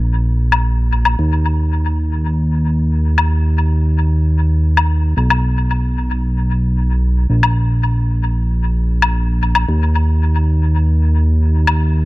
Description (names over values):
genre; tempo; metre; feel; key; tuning
nu-disco, nu disco; 113 BPM; 4/4; straight; unclear; A4 = 440 Hz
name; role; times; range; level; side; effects
fat analog bass; bass; 0.0-12.1 s; Bb1 to Eb2; -14 LUFS; equal; none
woodblock; drums; 0.5-11.8 s; none; -20 LUFS; left 4 dB; low-pass filter on perc, dub echo
room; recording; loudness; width
digital ambience; echo-heavy mix; -13 LUFS; side -19 dB against mid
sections
0.0-12.1 A section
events
none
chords
none